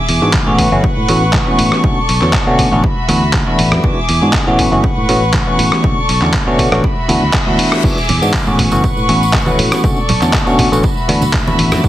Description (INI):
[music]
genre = filtered disco house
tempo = 120 BPM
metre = 4/4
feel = straight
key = unclear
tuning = A4 = 439 Hz
[part]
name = warm chamber violin section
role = sustained chords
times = 0.0-11.9 s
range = F#4 to D6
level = -18 LUFS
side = equal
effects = vintage 12-bit sampler grit, sidechain pumping
[part]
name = fingered electric bass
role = bass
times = 0.1-11.9 s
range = F#1 to B2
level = -17 LUFS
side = equal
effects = sidechain pumping
[part]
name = dusty soul sampler-style drum kit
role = drums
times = 0.1-11.8 s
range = crash cymbal, handclaps, hi-hat, rim click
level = -18 LUFS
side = equal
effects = sidechain pumping on hats, studio reverb, sidechain pumping on cymbals
[part]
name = bell-like tine electric piano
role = accompaniment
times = 0.2-11.9 s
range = D3 to F#4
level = -16 LUFS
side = equal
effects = phaser, vintage 12-bit sampler grit, sidechain pumping
[part]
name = electronic kick drum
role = drums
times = 0.3-11.9 s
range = none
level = -16 LUFS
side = equal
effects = overdrive, studio reverb
[part]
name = reverse cymbal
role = sound effects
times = 7.0-7.8 s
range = none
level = -25 LUFS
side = left 7 dB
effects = none
[part]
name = tambourine and congas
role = percussion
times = 7.8-11.9 s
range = none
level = -23 LUFS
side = right 3 dB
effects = sidechain pumping on perc
[sound]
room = light reverb, digital ambience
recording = heavily compressed radio sound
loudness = -10 LUFS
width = side -13 dB against mid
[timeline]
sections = 0.0-11.9 A section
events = reverse cymbal 7.0-7.8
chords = 0.0 E7; 0.6 A69; 1.8 Bm9; 2.8 D69; 3.8 E7; 4.6 A69; 5.8 Bm9; 6.8 D69; 7.8 E7; 8.6 A69; 9.8 Bm9; 10.8 D69